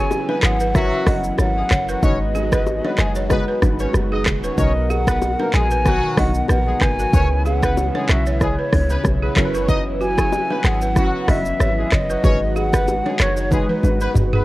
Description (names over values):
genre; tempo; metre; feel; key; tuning
afrobeats; 94 BPM; 4/4; swing 55% on 16ths; unclear; A4 = 439 Hz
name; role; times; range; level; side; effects
hollow concert flute; melody; 0.0-14.4 s; B4 to G#5; -24 LUFS; left 1 dB; ping-pong delay
clear horn section; second line; 0.0-14.4 s; F#3 to D#5; -28 LUFS; left 2 dB; none
warm analog keys; accompaniment; 0.0-14.4 s; B2 to B4; -26 LUFS; equal; chorus, phaser
lush unison pad; sustained chords; 0.0-14.4 s; C#3 to A#4; -30 LUFS; equal; chorus
balafon; riff; 0.0-14.4 s; F#4 to D#5; -28 LUFS; right 4 dB; none
afro-pop drum kit; drums; 0.1-14.4 s; handclaps, hi-hat, kick drum, rim click, shaker, toms; -20 LUFS; equal; none
bongos and congas; percussion; 0.1-14.3 s; none; -29 LUFS; left 3 dB; none
warm 808-style bass; bass; 0.4-14.4 s; D#1 to C#2; -21 LUFS; equal; none
room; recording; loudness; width
digital ambience; worn, warbling old tape, cassette tape, warbly pitch drift; -16 LUFS; side -17 dB against mid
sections
0.0-14.4 A section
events
drum fill 13.5-14.4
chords
0.0 F#7sus4; 2.0 G#m7; 4.6 Bmaj7; 7.1 C#m7; 9.4 F#7sus4; 12.2 G#m7